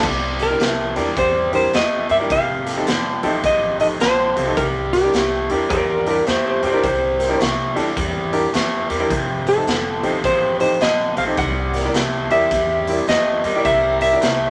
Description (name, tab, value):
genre	electric blues shuffle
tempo	106 BPM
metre	4/4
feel	swing 63% on 8ths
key	C mixolydian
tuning	A4 = 440 Hz
part	clear upright piano	accompaniment	0.0-14.2 s	C4 to D5	-26 LUFS	equal	none
part	overdriven electric guitar	riff	0.0-14.5 s	F2 to A3	-25 LUFS	equal	none
part	upright bass	bass	0.0-14.5 s	F1 to G2	-32 LUFS	equal	none
part	raw garage drum kit	drums	0.0-14.4 s	crash cymbal, hi-hat, kick drum, snare drum	-27 LUFS	equal	none
part	clean lap steel guitar	melody	0.4-14.5 s	G4 to F#5	-21 LUFS	equal	none
part	electric guitar through a small old amp	second line	5.7-7.4 s	G4 to D5	-22 LUFS	equal	none
part	clear horn section	stabs	13.7-14.4 s	C4 to Bb4	-32 LUFS	equal	none
room	moderate studio reverb, RT60 0.5 s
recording	none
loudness	-19 LUFS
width	mono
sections	0.0-14.5 A section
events	none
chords	0.0 C7; 2.3 F7; 4.6 C7; 9.1 F7; 11.4 C7